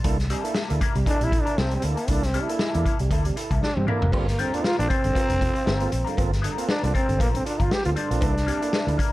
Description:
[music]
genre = funk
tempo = 117 BPM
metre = 4/4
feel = swing 56% on 16ths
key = unclear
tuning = A4 = 442 Hz
[part]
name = tonewheel organ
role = stabs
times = 0.0-9.0 s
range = G2 to A4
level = -32 LUFS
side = right 5 dB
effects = overdrive, stopped rotary speaker
[part]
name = vintage muted fingered electric bass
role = bass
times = 0.0-9.0 s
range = F1 to G2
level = -25 LUFS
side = equal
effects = none
[part]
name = vintage drum kit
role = drums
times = 0.0-9.1 s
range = hi-hat, kick drum, snare drum, splash cymbal, toms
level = -26 LUFS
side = equal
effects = none
[part]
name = electric guitar through a small old amp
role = accompaniment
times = 0.3-9.1 s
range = Bb3 to C5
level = -33 LUFS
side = left 6 dB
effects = wah, spring reverb
[part]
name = growling trombone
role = melody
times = 1.1-9.1 s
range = G3 to G4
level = -26 LUFS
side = equal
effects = none
[part]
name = cowbell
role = percussion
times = 4.1-8.9 s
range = none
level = -37 LUFS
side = left 2 dB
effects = none
[sound]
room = studio reverb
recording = dark, warm production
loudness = -21 LUFS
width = side -17 dB against mid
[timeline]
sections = 0.0-9.1 A section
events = trombone solo 0.0-9.1; drum fill 3.6-4.1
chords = 0.0 C13; 4.1 Gm11; 8.2 C13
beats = | 0.04 0.56 1.07 1.58 | 2.09 2.60 3.11 3.62 | 4.13 4.64 5.16 5.67 | 6.18 6.69 7.20 7.71 | 8.22 8.73

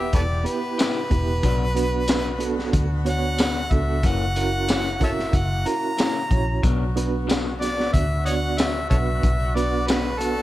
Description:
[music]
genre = straight-eighth soul blues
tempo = 92 BPM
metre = 4/4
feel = straight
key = B minor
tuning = A4 = 438 Hz
[part]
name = bright harmonica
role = melody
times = 0.0-10.4 s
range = A4 to A#5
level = -27 LUFS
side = equal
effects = overdrive
[part]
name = mellow reed electric piano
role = accompaniment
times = 0.0-10.4 s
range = B3 to D5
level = -27 LUFS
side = right 5 dB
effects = fast tremolo
[part]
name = clear horn section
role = sustained chords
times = 0.0-10.4 s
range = A#3 to G4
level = -34 LUFS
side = left 2 dB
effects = none
[part]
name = electric guitar through a small old amp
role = stabs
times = 0.0-10.4 s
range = F#2 to G4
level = -31 LUFS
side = left 6 dB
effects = analog delay
[part]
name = vintage muted fingered electric bass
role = bass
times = 0.0-10.4 s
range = E1 to D2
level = -25 LUFS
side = equal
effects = none
[part]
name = crunchy breakbeat drum kit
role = drums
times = 0.1-10.4 s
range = hi-hat, kick drum, snare drum, tambourine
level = -24 LUFS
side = equal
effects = none
[sound]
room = little or no reverb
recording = none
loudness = -20 LUFS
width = side -15 dB against mid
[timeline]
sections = 0.0-6.6 A section; 6.6-10.4 B section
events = harmonica solo 0.0-6.6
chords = 0.0 Em; 1.4 Bm; 4.0 F#7; 6.6 Bm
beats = 0.14 0.79 | 1.44 2.09 2.74 3.39 | 4.04 4.68 5.33 5.98 | 6.63 7.28 7.93 8.58 | 9.23 9.88

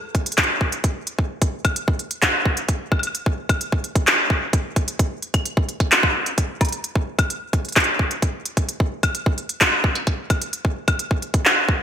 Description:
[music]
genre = IDM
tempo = 130 BPM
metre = 4/4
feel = straight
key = none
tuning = none
[part]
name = electronic kick drum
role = drums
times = 0.1-11.8 s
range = none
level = -21 LUFS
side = equal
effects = overdrive
[part]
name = organic electronic drum kit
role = drums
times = 0.1-11.5 s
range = handclaps, hi-hat, woodblock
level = -20 LUFS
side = equal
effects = overdrive, gated reverb, digital delay
[sound]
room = moderate plate reverb, RT60 2.3 s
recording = bright 1980s-style digital production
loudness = -18 LUFS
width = side -9 dB against mid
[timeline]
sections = 0.0-11.8 A section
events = none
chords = none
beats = 0.38 0.84 | 1.30 1.76 2.22 2.69 | 3.15 3.61 4.07 4.53 | 4.99 5.46 5.92 6.38 | 6.84 7.30 7.76 8.22 | 8.69 9.15 9.61 10.07 | 10.53 10.99 11.46

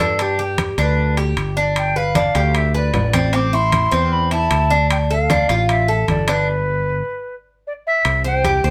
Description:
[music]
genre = latin, Cuban son and guajira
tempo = 153 BPM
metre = 4/4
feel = straight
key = unclear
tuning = A4 = 440 Hz
[part]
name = reedy silver concert flute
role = melody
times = 0.0-8.7 s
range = G4 to D6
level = -23 LUFS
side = equal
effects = none
[part]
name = Cuban tres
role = arpeggios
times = 0.0-8.7 s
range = C4 to C5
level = -23 LUFS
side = equal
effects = none
[part]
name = fretless electric bass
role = bass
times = 0.0-8.7 s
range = G1 to G2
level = -22 LUFS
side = equal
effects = none
[part]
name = congas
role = percussion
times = 0.2-8.7 s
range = none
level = -27 LUFS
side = equal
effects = none
[part]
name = timbales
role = percussion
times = 0.2-8.6 s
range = none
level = -28 LUFS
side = equal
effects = none
[sound]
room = light reverb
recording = band playing live in one room, faint mains hum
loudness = -18 LUFS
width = mono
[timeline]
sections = 0.0-8.0 A section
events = stop 6.5-8.0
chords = 0.2 G; 3.3 Am; 4.9 Dm; 6.5 G; 8.0 C5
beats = | 0.19 0.58 0.98 1.37 | 1.76 2.16 2.55 2.94 | 3.33 3.73 4.12 4.51 | 4.91 5.30 5.69 6.08 | 6.48 6.87 7.26 7.66 | 8.05 8.44

